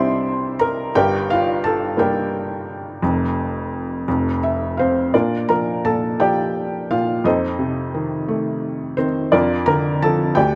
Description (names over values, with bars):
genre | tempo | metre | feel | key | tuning
classical, lyrical solo piano | 57 BPM (dotted quarters) | 6/8 | rubato | Bb major from 5.1 s | A4 = 440 Hz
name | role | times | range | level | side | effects
felt-muted upright piano | solo | 0.0-10.6 s | F1 to C6 | -20 LUFS | equal | none
room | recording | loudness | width
light reverb | close, detailed microphones | -20 LUFS | mono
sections
0.0-5.1 A section; 5.1-10.6 B section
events
felt piano fill 4.1-5.1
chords
0.0 C; 0.9 Gm; 3.0 Bb5/F; 4.1 F5; 5.1 Bb; 7.2 F7; 9.3 Bb/F